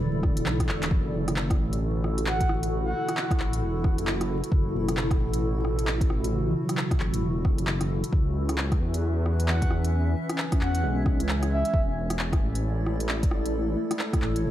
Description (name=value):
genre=future garage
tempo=133 BPM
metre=4/4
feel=swing 62% on 16ths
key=F# minor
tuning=A4 = 440 Hz
part: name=tine electric piano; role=accompaniment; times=0.0-14.5 s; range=B2 to A3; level=-33 LUFS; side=right 2 dB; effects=medium stereo tremolo, sidechain pumping, dub echo
part: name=granular cloud pad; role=sustained chords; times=0.0-14.5 s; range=C#4 to E5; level=-32 LUFS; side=left 2 dB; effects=built-in reverb, sidechain pumping
part: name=swelling detuned saw bass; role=bass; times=0.0-14.5 s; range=D1 to E2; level=-27 LUFS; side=equal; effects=sidechain pumping
part: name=electronic kick drum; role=drums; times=0.2-14.2 s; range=none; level=-25 LUFS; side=equal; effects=overdrive
part: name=organic electronic drum kit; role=drums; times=0.2-14.4 s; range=handclaps, hi-hat, rim click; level=-32 LUFS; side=equal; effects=overdrive
part: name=breathy flute-like synth lead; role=melody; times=2.3-3.3, 9.5-11.8 s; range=E5 to F#5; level=-33 LUFS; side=right 2 dB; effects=lush chorus, tape echo
room=light reverb, digital ambience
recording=vinyl crackle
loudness=-23 LUFS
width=side -12 dB against mid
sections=0.0-14.5 A section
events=drum fill 0.7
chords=0.0 E7sus4; 0.9 F#m7; 8.1 C#m7; 11.7 E7sus4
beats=0.01 0.46 | 0.91 1.36 1.81 2.26 | 2.71 3.17 3.62 4.07 | 4.52 4.97 5.42 5.87 | 6.32 6.78 7.23 7.68 | 8.13 8.58 9.03 9.48 | 9.93 10.38 10.84 11.29 | 11.74 12.19 12.64 13.09 | 13.54 13.99 14.44